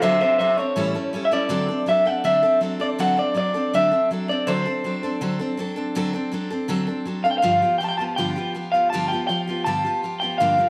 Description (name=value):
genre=rock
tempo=162 BPM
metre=4/4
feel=straight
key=unclear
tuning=A4 = 441 Hz
part: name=electric guitar through a small old amp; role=melody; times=0.0-10.7 s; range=C5 to A5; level=-23 LUFS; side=equal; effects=tape echo
part: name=picked steel-string acoustic guitar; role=accompaniment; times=0.0-10.7 s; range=G2 to A4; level=-27 LUFS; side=equal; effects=none
room=moderate echo chamber reverb, RT60 2.0 s, small room ambience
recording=none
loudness=-22 LUFS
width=mono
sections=0.0-1.5 A section; 1.5-10.7 B section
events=clean electric guitar solo 0.0-1.5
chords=0.0 D7; 0.8 A7; 1.5 D7; 7.4 G7